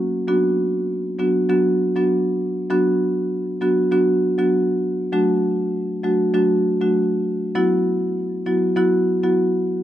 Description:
afrobeats; 99 BPM; 4/4; swing 55% on 16ths; B minor; A4 = 439 Hz
marimba with medium mallets; solo; 0.3-9.4 s; F#3 to F#4; -18 LUFS; equal
studio ambience; dry, gritty hardware recording; -17 LUFS; side -12 dB against mid
0.3-9.8 A section
0.3 Bm; 5.1 D; 7.6 Esus2

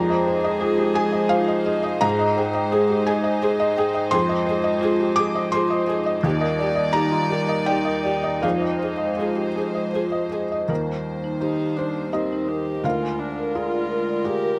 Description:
neoclassical piano and strings; 85 BPM; 3/4; rubato; Eb major; A4 = 440 Hz
dark viola; accompaniment; 0.0-14.6 s; C4 to Ab4; -30 LUFS; equal
felt-muted upright piano; accompaniment; 0.0-14.6 s; D2 to D6; -26 LUFS; equal
rich chamber string section; sustained chords; 0.0-14.6 s; Eb3 to D5; -30 LUFS; equal
marimba with soft mallets; arpeggios; 0.1-14.5 s; Eb4 to Ab5; -28 LUFS; equal
little or no reverb; recorded outdoors, with no room sound; -22 LUFS; mono
0.0-10.7 A section; 10.7-14.6 B section
0.0 Fm7; 2.0 Abmaj7; 4.1 Fm7; 6.2 Ebmaj7; 8.4 Fm7; 10.7 Eb6; 12.8 Bb7/D

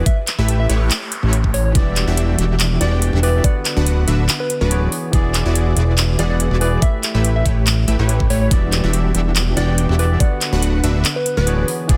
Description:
future bass; 142 BPM; 4/4; swing 53% on 16ths, half-time; E dorian; A4 = 440 Hz
supersaw stab; riff; 0.0-12.0 s; D3 to G5; -26 LUFS; equal; sidechain pumping, digital delay
fat analog bass; bass; 0.0-12.0 s; D1 to A1; -19 LUFS; equal; sidechain pumping
soft struck synth lead; melody; 0.1-11.7 s; B4 to E5; -28 LUFS; equal; chorus, sidechain pumping, digital delay
dubstep drum kit; drums; 0.1-12.0 s; handclaps, hi-hat; -24 LUFS; equal
electronic kick drum; drums; 0.1-12.0 s; -18 LUFS; equal
noise sweep; sound effects; 0.7-1.8 s; -35 LUFS; equal
barky tine electric piano; accompaniment; 1.7-12.0 s; D3 to F#5; -27 LUFS; equal; sidechain pumping, digital delay
light reverb, digital ambience; dense, heavily limited modern master; -17 LUFS; mono
0.0-12.0 A section
noise sweep 0.7-1.8
0.1 A7; 1.8 Em7; 3.4 D69; 4.9 E7; 6.8 A7; 8.5 Em7; 10.2 D69

